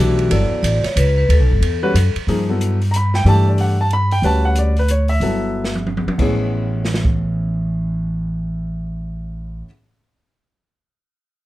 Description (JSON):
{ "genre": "modal jazz", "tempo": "184 BPM", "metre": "3/4", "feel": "swing 62% on 8ths", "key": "unclear", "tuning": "A4 = 441 Hz", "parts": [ { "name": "vibraphone with medium hard mallets", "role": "melody", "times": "0.0-2.1 s", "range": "F#4 to D5", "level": "-21 LUFS", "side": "left 2 dB", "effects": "none" }, { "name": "warm concert grand piano", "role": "accompaniment", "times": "0.0-9.7 s", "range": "A2 to B5", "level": "-21 LUFS", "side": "left 1 dB", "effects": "none" }, { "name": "upright bass", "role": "bass", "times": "0.0-9.6 s", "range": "G1 to G2", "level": "-17 LUFS", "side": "equal", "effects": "none" }, { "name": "open jazz drum kit", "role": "drums", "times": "0.2-7.1 s", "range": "crash cymbal, hi-hat, kick drum, ride cymbal, snare drum, toms", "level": "-25 LUFS", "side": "right 1 dB", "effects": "none" } ], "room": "little or no reverb", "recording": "dark, warm production", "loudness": "-15 LUFS", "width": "side -16 dB against mid", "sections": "0.0-2.3 A section; 2.3-6.2 B section; 6.2-8.1 C section", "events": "drum fill 5.5-6.2", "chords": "0.0 Gmaj9; 6.2 Amaj9", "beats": "| 0.30 0.63 0.96 | 1.28 1.61 1.94 | 2.27 2.59 2.92 | 3.25 3.57 3.90 | 4.23 4.55 4.88 | 5.21 5.53 5.86 | 6.19 6.51 6.84 | 7.17 7.49 7.82" }